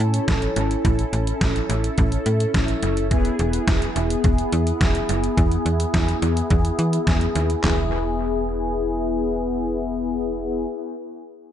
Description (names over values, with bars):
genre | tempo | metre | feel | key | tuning
synth-pop | 106 BPM | 4/4 | straight | E major | A4 = 440 Hz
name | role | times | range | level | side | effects
mellow synth brass | accompaniment | 0.0-10.7 s | B3 to A4 | -23 LUFS | left 1 dB | chorus, low-pass filter, analog delay
slap-like FM bass | bass | 0.0-10.7 s | E1 to E3 | -24 LUFS | equal | none
detuned 8-bit digital drum machine | drums | 0.0-7.8 s | handclaps, hi-hat, kick drum, snare drum, toms | -22 LUFS | equal | analog delay
room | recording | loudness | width
light reverb | echo-heavy mix, nothing above 11.0 kHz | -19 LUFS | side -10 dB against mid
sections
0.0-7.6 A section; 7.6-9.9 B section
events
filter sweep on analog polysynth 0.0-7.6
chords
0.0 A; 3.1 E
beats
0.28 | 0.85 1.41 1.98 2.54 | 3.11 3.68 4.24 4.81 | 5.38 5.94 6.51 7.07 | 7.64 8.21 8.77 9.34